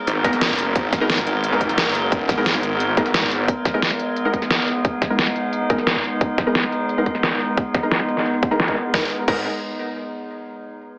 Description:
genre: dark technical drum and bass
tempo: 176 BPM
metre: 4/4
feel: straight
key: G# minor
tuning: A4 = 440 Hz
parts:
  - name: metallic inharmonic drone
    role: sustained chords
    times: 0.0-9.1 s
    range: G#3 to A#4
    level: -24 LUFS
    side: equal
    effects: chorus, built-in reverb, vintage 12-bit sampler grit, sidechain pumping
  - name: snarling distorted saw bass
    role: bass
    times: 0.1-3.5, 8.9-9.4 s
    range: F#1 to G#1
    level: -23 LUFS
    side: equal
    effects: distortion, tube saturation, sidechain pumping
  - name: dubstep drum kit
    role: drums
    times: 0.1-9.3 s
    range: crash cymbal, hi-hat, snare drum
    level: -21 LUFS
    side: equal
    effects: low-pass filter on hats, low-pass filter on snare, low-pass filter on toms, low-pass filter on cymbals
  - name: orchestra-hit-like synth stab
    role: stabs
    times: 0.2-9.4 s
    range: G#3 to A#4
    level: -25 LUFS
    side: equal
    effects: built-in reverb, digital delay
  - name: electronic kick drum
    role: drums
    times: 0.2-9.3 s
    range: none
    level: -22 LUFS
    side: equal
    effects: none
room: wet digital room reverb, RT60 1.0 s, digital ambience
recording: heavily compressed radio sound, AM radio sound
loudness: -17 LUFS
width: side -32 dB against mid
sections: 0.0-8.9 A section; 8.9-10.3 B section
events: filter sweep on drum 0.0-8.9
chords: 0.0 G#madd9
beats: 0.07 0.41 | 0.76 1.10 1.44 1.78 | 2.12 2.46 2.80 3.14 | 3.48 3.82 4.17 4.51 | 4.85 5.19 5.53 5.87 | 6.21 6.55 6.89 7.23 | 7.57 7.92 8.26 8.60 | 8.94 9.28

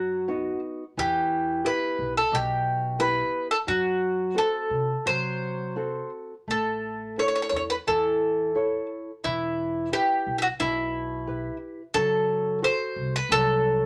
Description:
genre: fado-style ballad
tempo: 88 BPM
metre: 4/4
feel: rubato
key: E minor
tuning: A4 = 440 Hz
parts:
  - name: bowl-back mandolin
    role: melody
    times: 0.0-13.9 s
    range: E4 to C#5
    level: -27 LUFS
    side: equal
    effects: none
  - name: nylon-string guitar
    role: accompaniment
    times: 0.0-13.9 s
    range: B2 to C#5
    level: -34 LUFS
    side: equal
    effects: none
  - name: upright bass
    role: bass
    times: 0.0-13.9 s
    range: E1 to C3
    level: -37 LUFS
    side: equal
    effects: none
room: moderate studio reverb, RT60 0.5 s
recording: none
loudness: -26 LUFS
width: mono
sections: 0.0-13.9 A section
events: none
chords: 0.0 B; 1.0 Em; 3.7 F#dim; 6.5 A; 9.2 Em; 11.9 F#dim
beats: 0.29 | 0.97 1.65 2.33 2.99 | 3.67 4.36 5.05 5.77 | 6.48 7.18 7.87 8.56 | 9.24 9.92 10.60 11.27 | 11.94 12.62 13.30

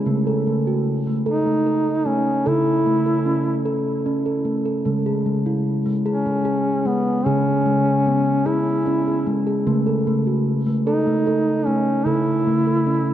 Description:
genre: world meditative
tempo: 50 BPM (dotted quarters)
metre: 6/8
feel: straight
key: unclear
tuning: A4 = 440 Hz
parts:
  - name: steel tongue drum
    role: arpeggios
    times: 0.0-13.1 s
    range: C#3 to A4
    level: -20 LUFS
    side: equal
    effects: none
  - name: mellow duduk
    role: melody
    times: 1.3-13.1 s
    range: B3 to E4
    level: -22 LUFS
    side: equal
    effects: none
room: wet cathedral reverb, RT60 4.5 s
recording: worn, warbling old tape, cassette tape, warbly pitch drift, nothing above 10.6 kHz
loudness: -18 LUFS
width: side -11 dB against mid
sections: 0.0-13.1 A section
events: none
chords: 0.1 A/C#; 4.9 C#5; 9.7 A/C#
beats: | 0.06 1.26 | 2.47 3.67 | 4.87 6.07 | 7.27 8.47 | 9.67 10.86 | 12.06

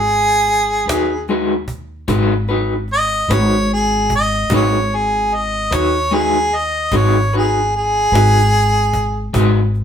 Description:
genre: slow blues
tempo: 50 BPM (dotted quarters)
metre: 12/8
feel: straight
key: unclear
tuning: A4 = 440 Hz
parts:
  - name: clear harmonica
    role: melody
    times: 0.0-9.3 s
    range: Ab4 to Eb5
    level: -16 LUFS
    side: right 1 dB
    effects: overdrive
  - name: upright bass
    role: bass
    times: 0.0-9.8 s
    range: Ab1 to Eb2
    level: -19 LUFS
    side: equal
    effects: none
  - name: cajon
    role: drums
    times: 0.1-9.8 s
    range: none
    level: -24 LUFS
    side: right 1 dB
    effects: none
  - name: electric guitar through a small old amp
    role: accompaniment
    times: 0.9-9.6 s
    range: Ab3 to Cb5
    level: -18 LUFS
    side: left 2 dB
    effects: tremolo
room: moderate studio reverb, RT60 0.7 s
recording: band playing live in one room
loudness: -13 LUFS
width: side -8 dB against mid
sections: 0.0-9.8 A section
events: harmonica solo 0.0-9.8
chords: 0.0 Abm7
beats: 0.88 2.09 3.29 | 4.50 5.71 6.92 8.13 | 9.35

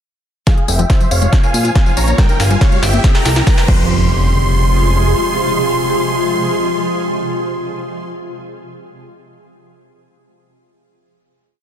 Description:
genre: uplifting trance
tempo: 140 BPM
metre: 4/4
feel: straight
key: F harmonic minor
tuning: A4 = 439 Hz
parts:
  - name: supersaw chords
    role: melody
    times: 0.5-8.1 s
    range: Ab4 to C6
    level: -20 LUFS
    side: right 1 dB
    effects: sidechain pumping, low-pass filter, ping-pong delay
  - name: shimmering ambient pad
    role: sustained chords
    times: 1.3-8.1 s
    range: Bb2 to Ab4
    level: -19 LUFS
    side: equal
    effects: chorus, built-in reverb, vintage 12-bit sampler grit, sidechain pumping
  - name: tight sequenced synth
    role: arpeggios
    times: 0.5-4.1 s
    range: E3 to G5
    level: -22 LUFS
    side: left 1 dB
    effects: chorus, phaser, sidechain pumping, ping-pong delay
  - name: big-room dance drum kit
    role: drums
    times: 0.5-3.8 s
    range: crash cymbal, hi-hat, snare drum, tambourine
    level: -22 LUFS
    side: left 1 dB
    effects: high-pass filter on snare, sidechain pumping on hats, high-pass filter on hats, sidechain pumping on perc, high-pass filter on perc, sidechain pumping on cymbals, high-pass filter on cymbals, high-pass filter on room
  - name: electronic kick drum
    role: drums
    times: 0.5-3.8 s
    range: none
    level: -12 LUFS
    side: equal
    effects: none
  - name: riser and impact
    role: sound effects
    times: 1.7-8.2 s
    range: none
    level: -24 LUFS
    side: equal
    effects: none
  - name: fat analog bass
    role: bass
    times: 0.7-5.1 s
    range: F1 to Bb2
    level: -14 LUFS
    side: equal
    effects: sidechain pumping
room: light reverb, digital ambience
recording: dense, heavily limited modern master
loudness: -12 LUFS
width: side -9 dB against mid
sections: 0.5-3.9 build; 3.9-7.3 final hit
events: build-up 0.5-3.9; drum fill 0.5-3.9; filter sweep on supersaw synth 0.5-3.9; riser 1.7-3.9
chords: 0.5 Fm; 1.3 Bbm; 2.2 Gdim; 3.0 C; 3.7 Fm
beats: | 0.47 0.90 1.33 1.75 | 2.18 2.61 3.04 3.47 | 3.90 4.33 4.75 5.18 | 5.61 6.04 6.47 6.90

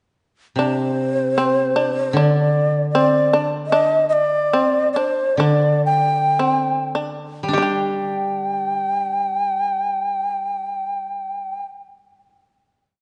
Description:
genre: japanese traditional, Japanese chamber music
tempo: 47-77 BPM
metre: 2/4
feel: rubato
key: unclear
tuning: A4 = 444 Hz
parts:
  - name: breathy long shakuhachi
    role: melody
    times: 0.6-11.6 s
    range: C5 to G5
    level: -22 LUFS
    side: equal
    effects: none
  - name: shamisen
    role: second line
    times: 0.6-11.7 s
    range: G3 to G4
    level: -25 LUFS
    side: equal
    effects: none
  - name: koto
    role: accompaniment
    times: 0.6-11.7 s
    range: C3 to G4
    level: -25 LUFS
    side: equal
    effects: none
room: moderate scoring stage reverb, RT60 1.7 s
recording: dark, warm production, nothing above 10.3 kHz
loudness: -19 LUFS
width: mono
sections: 0.6-7.5 A section; 7.5-12.4 final chord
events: slowing down 3.7-7.5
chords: none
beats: | 0.57 1.38 | 2.16 2.94 | 3.72 4.53 | 5.38 6.37 | 7.54 8.76 | 9.93 11.14

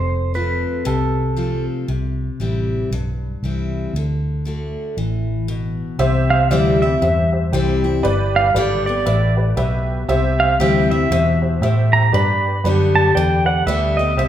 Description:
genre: honky-tonk and classic country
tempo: 117 BPM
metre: 4/4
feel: swing 60% on 8ths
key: G major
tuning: A4 = 440 Hz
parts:
  - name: pedal steel guitar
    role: second line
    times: 0.0-1.6, 6.3-14.3 s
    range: A4 to B5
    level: -19 LUFS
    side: right 2 dB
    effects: none
  - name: picked steel-string acoustic guitar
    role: accompaniment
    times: 0.0-14.3 s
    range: F2 to G4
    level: -21 LUFS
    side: left 3 dB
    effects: none
  - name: vintage muted fingered electric bass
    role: bass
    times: 0.0-14.3 s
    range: F1 to A2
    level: -20 LUFS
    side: equal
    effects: none
  - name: honky-tonk upright piano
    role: accompaniment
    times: 6.0-14.3 s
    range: G4 to G5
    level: -23 LUFS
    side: right 1 dB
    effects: none
room: wet large studio reverb, RT60 1.2 s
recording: minimal, uncompressed stereo recording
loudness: -16 LUFS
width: side -10 dB against mid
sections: 0.0-6.0 A section; 6.0-14.3 B section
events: pedal steel guitar solo 0.0-6.0, 6.0-14.3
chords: 0.0 F; 1.9 C; 3.9 D; 6.0 C; 8.0 G; 10.1 C; 12.1 G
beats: 0.34 0.85 1.37 | 1.88 2.40 2.91 3.42 | 3.94 4.45 4.97 5.48 | 5.99 6.50 7.02 7.53 | 8.04 8.55 9.06 9.58 | 10.09 10.60 11.11 11.62 | 12.13 12.64 13.15 13.67 | 14.18

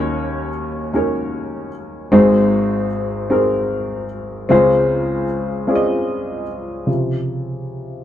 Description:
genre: gospel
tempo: 50 BPM (dotted quarters)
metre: 6/8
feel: straight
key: Db major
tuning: A4 = 436 Hz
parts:
  - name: warm upright piano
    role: solo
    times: 0.0-8.0 s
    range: Ab1 to Eb5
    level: -16 LUFS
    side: equal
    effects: none
room: wet studio ambience, RT60 0.5 s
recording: band playing live in one room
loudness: -16 LUFS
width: side -11 dB against mid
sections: 0.0-6.9 A section; 6.9-8.0 B section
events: upright piano solo 6.9-8.0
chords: 0.0 Ebm7; 2.1 Ab7; 4.5 Dbmaj7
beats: 0.94 | 2.12 3.31 | 4.50 5.69 | 6.88

